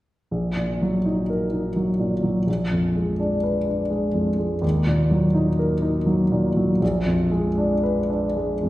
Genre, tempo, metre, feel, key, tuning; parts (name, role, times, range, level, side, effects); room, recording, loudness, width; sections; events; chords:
classical; 83 BPM; 3/4; uneven beats, rubato; Eb minor; A4 = 440 Hz
warm grand piano; accompaniment; 0.3-8.7 s; Bb1 to Cb5; -20 LUFS; equal
wet recital hall reverb, RT60 1.4 s; heard from further back in the room; -20 LUFS; side -16 dB against mid
0.3-8.7 A section
0.3 Ebm/Bb; 2.5 Bb7b9; 4.6 Ebm; 6.8 Bb7b9